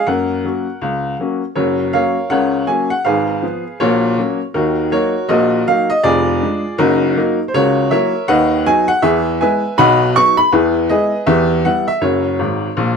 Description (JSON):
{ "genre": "jazz, stride piano", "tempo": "161 BPM", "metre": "4/4", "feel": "swing 61% on 8ths", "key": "F# major, B major from 7.5 s", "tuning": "A4 = 440 Hz", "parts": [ { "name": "clear upright piano", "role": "solo", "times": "0.0-13.0 s", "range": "F1 to C#6", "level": "-13 LUFS", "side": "equal", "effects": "none" } ], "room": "moderate club reverb, RT60 0.7 s", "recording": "none", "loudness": "-13 LUFS", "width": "side -6 dB against mid", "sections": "0.0-1.6 A section; 1.6-13.0 B section", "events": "upright piano fill 12.4-13.0", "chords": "0.1 F#; 3.0 Fdim/Ab; 3.8 F#/A#; 4.5 D#m; 6.0 Ddim/F; 6.8 D#m/F#; 7.5 F#7/C#; 8.3 B/D#; 9.0 E; 9.8 B; 10.5 E; 11.3 Em; 12.0 F#" }